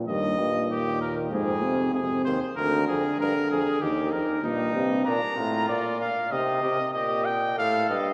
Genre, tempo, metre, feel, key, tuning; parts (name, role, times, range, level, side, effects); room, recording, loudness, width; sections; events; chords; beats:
classical, imitative canzona for brass ensemble; 96 BPM; 4/4; straight; Eb major; A4 = 439 Hz
mellow trombone; accompaniment; 0.0-5.0 s; G2 to Eb3; -30 LUFS; equal
clear trumpet; second line; 0.1-8.1 s; D4 to Eb5; -32 LUFS; equal
clear euphonium; bass; 0.1-8.1 s; D2 to C3; -32 LUFS; equal
clear trumpet; melody; 5.1-8.1 s; D5 to Bb5; -28 LUFS; equal
wet church reverb, RT60 3.0 s; heard from further back in the room; -26 LUFS; mono
0.0-8.1 A section
0.1 Eb; 1.3 Fm; 2.6 Bb/D; 3.8 Eb; 5.1 Bb; 6.3 Cm; 7.6 F
| 0.08 0.70 1.32 1.94 | 2.57 3.20 3.82 4.44 | 5.06 5.69 6.32 6.95 | 7.58